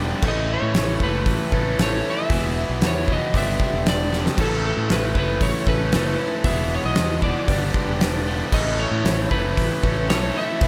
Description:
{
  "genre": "classic rock",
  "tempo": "116 BPM",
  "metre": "4/4",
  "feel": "straight",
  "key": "unclear",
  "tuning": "A4 = 440 Hz",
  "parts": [
    { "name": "clear upright piano", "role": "accompaniment", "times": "0.0-10.7 s", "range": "C#4 to C#5", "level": "-39 LUFS", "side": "equal", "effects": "none" },
    { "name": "bright tonewheel organ", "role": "sustained chords", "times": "0.0-10.7 s", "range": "B3 to B4", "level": "-39 LUFS", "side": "equal", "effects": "none" },
    { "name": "distorted electric guitar", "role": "riff", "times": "0.0-10.7 s", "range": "E2 to A4", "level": "-30 LUFS", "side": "equal", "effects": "overdrive" },
    { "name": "overdriven electric guitar", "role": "riff", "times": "0.0-10.7 s", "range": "E2 to A3", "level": "-32 LUFS", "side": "equal", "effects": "slapback echo" },
    { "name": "fuzz fingered electric bass", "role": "bass", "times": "0.0-10.7 s", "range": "E1 to A2", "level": "-28 LUFS", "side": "equal", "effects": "overdrive" },
    { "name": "huge arena drum kit", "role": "drums", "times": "0.2-10.7 s", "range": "crash cymbal, hi-hat, kick drum, snare drum", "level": "-26 LUFS", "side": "equal", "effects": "none" },
    { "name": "electric slide guitar", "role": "melody", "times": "0.3-10.7 s", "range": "A4 to E5", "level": "-29 LUFS", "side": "equal", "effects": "slapback echo" }
  ],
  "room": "moderate lush hall reverb, RT60 2.1 s",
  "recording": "big arena sound",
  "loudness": "-21 LUFS",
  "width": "mono",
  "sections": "0.0-10.7 A section",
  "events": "drum fill 4.1",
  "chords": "0.2 Aadd9; 2.3 E; 3.4 G; 4.4 Aadd9; 6.5 E; 7.5 G; 8.5 Aadd9"
}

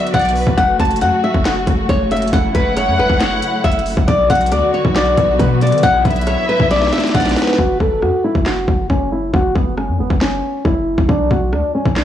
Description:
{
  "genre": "hip hop, trap",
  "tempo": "137 BPM",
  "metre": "4/4",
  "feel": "half-time",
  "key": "F# minor",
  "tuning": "A4 = 440 Hz",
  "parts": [
    { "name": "flamenco guitar", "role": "melody", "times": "0.0-12.0 s", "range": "B3 to A5", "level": "-17 LUFS", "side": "left 1 dB", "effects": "low-pass filter, tape echo" },
    { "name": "warm studio violin section", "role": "second line", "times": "0.0-7.6 s", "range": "B4 to F#5", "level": "-22 LUFS", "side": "left 1 dB", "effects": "tape echo" },
    { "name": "dark symphonic string section", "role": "sustained chords", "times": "0.0-7.6 s", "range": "C#3 to F#4", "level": "-21 LUFS", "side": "left 1 dB", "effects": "none" },
    { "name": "warm 808-style bass", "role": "bass", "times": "0.1-12.0 s", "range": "F#1 to D3", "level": "-20 LUFS", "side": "equal", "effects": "none" },
    { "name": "trap drum kit", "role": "drums", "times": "0.1-12.0 s", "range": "handclaps, hi-hat, kick drum, rim click, snare drum", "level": "-18 LUFS", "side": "equal", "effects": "none" }
  ],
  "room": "light reverb, studio reverb",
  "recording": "blown-out, overdriven recording, overdrive, studio ambience",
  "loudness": "-13 LUFS",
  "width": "side -10 dB against mid",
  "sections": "0.0-7.6 A section; 7.6-12.0 B section",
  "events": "drum fill 6.7-7.6; break 7.6-12.0",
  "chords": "0.0 Bm; 0.6 F#m; 4.1 Bm; 7.6 F#5; 11.1 Bm"
}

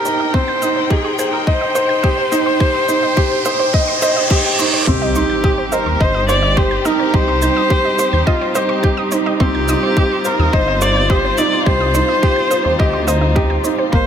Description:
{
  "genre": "piano and strings electronica",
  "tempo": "106 BPM",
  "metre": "4/4",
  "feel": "straight",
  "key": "C minor",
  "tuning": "A4 = 441 Hz",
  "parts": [
    { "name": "warm viola", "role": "melody", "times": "0.0-14.1 s", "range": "Eb4 to D5", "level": "-18 LUFS", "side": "left 1 dB", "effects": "ping-pong delay" },
    { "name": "dark studio string section", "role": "sustained chords", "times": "0.0-14.1 s", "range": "C3 to G5", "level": "-23 LUFS", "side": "left 2 dB", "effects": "sidechain pumping" },
    { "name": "felt-muted upright piano", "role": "riff", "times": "0.0-14.1 s", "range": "Bb3 to Eb5", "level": "-19 LUFS", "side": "right 2 dB", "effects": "ping-pong delay" },
    { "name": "riser, reverse cymbal and impact", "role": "sound effects", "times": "0.3-7.1 s", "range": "none", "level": "-22 LUFS", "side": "right 1 dB", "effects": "none" },
    { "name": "wide unison pluck", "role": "arpeggios", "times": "0.1-14.0 s", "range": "C5 to G6", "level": "-25 LUFS", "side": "right 3 dB", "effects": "sidechain pumping, ping-pong delay" },
    { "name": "shaker", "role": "drums", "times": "0.1-13.8 s", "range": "none", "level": "-27 LUFS", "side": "right 2 dB", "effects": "none" },
    { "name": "dark detuned saw bass", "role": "bass", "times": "0.3-14.1 s", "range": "G1 to Eb2", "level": "-20 LUFS", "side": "left 1 dB", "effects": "sidechain pumping, high-pass filter" },
    { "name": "electronic kick drum", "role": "drums", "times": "0.3-14.0 s", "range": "none", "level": "-16 LUFS", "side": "left 1 dB", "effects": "none" }
  ],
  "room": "light reverb, digital ambience",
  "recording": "none",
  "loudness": "-13 LUFS",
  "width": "side -8 dB against mid",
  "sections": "0.0-4.9 A section; 4.9-14.1 B section",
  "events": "build-up 0.0-4.9; riser 0.3-4.9; reverse cymbal 3.7-4.9; drop 4.9-14.1; impact 4.9-7.1",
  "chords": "0.0 Cm"
}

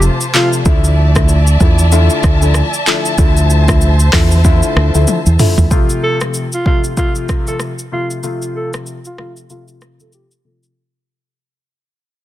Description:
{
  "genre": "afrobeats",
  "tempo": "95 BPM",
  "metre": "4/4",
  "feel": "swing 58% on 16ths",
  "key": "F major",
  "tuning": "A4 = 438 Hz",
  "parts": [
    { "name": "warm baby grand piano", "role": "accompaniment", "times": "0.0-10.7 s", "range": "C3 to F4", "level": "-19 LUFS", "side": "left 3 dB", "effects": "low-pass filter" },
    { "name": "warm studio string section", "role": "sustained chords", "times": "0.0-5.7 s", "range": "F4 to A5", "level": "-21 LUFS", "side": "equal", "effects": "none" },
    { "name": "fingered electric bass", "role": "bass", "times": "0.0-5.7 s", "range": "D2 to E2", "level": "-10 LUFS", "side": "equal", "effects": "none" },
    { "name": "deep house drum kit", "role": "drums", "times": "0.0-10.8 s", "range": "handclaps, hi-hat, kick drum, rim click, shaker, toms", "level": "-14 LUFS", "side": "equal", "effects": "overdrive" },
    { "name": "warm alto saxophone", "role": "melody", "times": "0.4-0.5, 6.0-10.6 s", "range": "F4 to A4", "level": "-20 LUFS", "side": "right 1 dB", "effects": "low-pass filter, digital delay" }
  ],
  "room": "little or no reverb",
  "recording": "dense, heavily limited modern master",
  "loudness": "-10 LUFS",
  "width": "side -14 dB against mid",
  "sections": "0.0-5.7 A section; 5.7-10.8 B section",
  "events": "drum fill 5.1-5.7; fade-out 5.7-10.8; filter sweep 5.7-10.8",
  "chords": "0.0 F; 0.7 Dmadd9; 5.7 F"
}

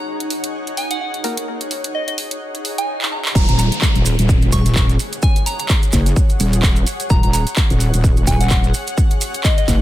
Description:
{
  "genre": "bass house",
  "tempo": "128 BPM",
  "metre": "4/4",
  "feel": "swing 57% on 16ths",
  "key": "Eb minor",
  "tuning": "A4 = 438 Hz",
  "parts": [
    { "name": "granular cloud pad", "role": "texture", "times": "0.0-9.8 s", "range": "Eb4 to Gb5", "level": "-28 LUFS", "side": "left 1 dB", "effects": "built-in reverb, sidechain pumping" },
    { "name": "big-room dance drum kit", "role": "drums", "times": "0.2-9.8 s", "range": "crash cymbal, handclaps, hi-hat", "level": "-24 LUFS", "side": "right 1 dB", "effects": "studio reverb" },
    { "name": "soft synth bell", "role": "melody", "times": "0.8-9.6 s", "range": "Eb5 to Db6", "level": "-25 LUFS", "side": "equal", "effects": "chorus, phaser, ping-pong delay" },
    { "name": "percussive organ stab", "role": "stabs", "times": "1.2-1.4 s", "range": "Bb3 to Bb4", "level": "-29 LUFS", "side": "left 2 dB", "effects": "chorus, phaser, sidechain pumping, ping-pong delay" },
    { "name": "swell and downlifter", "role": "sound effects", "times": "2.6-7.1 s", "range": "none", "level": "-28 LUFS", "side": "equal", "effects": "none" },
    { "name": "wobble bass", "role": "bass", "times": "3.4-9.8 s", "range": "Eb1 to Gb1", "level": "-16 LUFS", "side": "equal", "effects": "chorus, tube saturation, sidechain pumping" },
    { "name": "electronic kick drum", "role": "drums", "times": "3.4-9.8 s", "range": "none", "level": "-15 LUFS", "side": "equal", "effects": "studio reverb" },
    { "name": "maracas", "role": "percussion", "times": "3.4-9.8 s", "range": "none", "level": "-28 LUFS", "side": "right 6 dB", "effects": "none" }
  ],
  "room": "little or no reverb",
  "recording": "high-pass filter",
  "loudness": "-14 LUFS",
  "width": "side -14 dB against mid",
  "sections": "0.0-3.4 A section; 3.4-9.8 B section",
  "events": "build-up 0.0-3.4; swell 2.6-3.4; drum fill 3.0-3.4; drop 3.4-9.8",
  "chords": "0.0 Ebm"
}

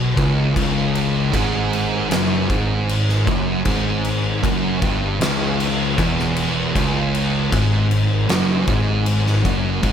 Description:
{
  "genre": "stoner and doom metal",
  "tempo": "78 BPM",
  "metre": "4/4",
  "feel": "straight",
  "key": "C# minor",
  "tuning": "A4 = 440 Hz",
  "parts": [
    { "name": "fuzz guitar", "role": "riff", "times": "0.0-9.9 s", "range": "C#2 to B2", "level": "-23 LUFS", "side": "equal", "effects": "distortion" },
    { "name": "thick fuzz guitar", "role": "riff", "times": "0.0-9.9 s", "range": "C#2 to B2", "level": "-24 LUFS", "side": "left 6 dB", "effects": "distortion" },
    { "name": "thick fuzz guitar", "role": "riff", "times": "0.0-9.9 s", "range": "C#2 to B2", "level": "-23 LUFS", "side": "right 7 dB", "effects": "distortion" },
    { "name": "barky tine electric piano", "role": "bass", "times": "0.0-9.9 s", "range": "E1 to C#2", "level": "-25 LUFS", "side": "equal", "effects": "overdrive" },
    { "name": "oversized low-tuned drum kit", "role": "drums", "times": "0.2-9.9 s", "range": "crash cymbal, kick drum, snare drum", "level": "-22 LUFS", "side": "equal", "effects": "none" }
  ],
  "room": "light reverb, studio ambience",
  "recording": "none",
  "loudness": "-16 LUFS",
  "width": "side -8 dB against mid",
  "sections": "0.0-9.9 A section",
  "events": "none",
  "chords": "0.0 C#m"
}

